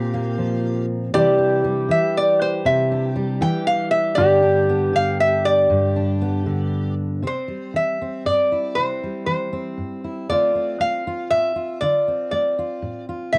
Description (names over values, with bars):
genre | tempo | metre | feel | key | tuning
acoustic folk duo or small band | 118 BPM | 3/4 | straight | C major | A4 = 440 Hz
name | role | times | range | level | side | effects
lap resonator guitar | melody | 0.0-13.4 s | C5 to G5 | -22 LUFS | equal | cassette tape
pedal steel guitar | second line | 0.0-6.9 s | G4 to A4 | -26 LUFS | equal | none
fingerpicked steel-string acoustic guitar | accompaniment | 0.0-13.4 s | G2 to G4 | -26 LUFS | equal | none
room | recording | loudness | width
light reverb | home recording on cassette | -20 LUFS | mono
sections
0.0-7.2 A section; 7.2-13.4 B section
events
none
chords
0.0 Bbsus2; 1.1 Cadd9; 4.2 G; 7.2 C; 10.3 Dm7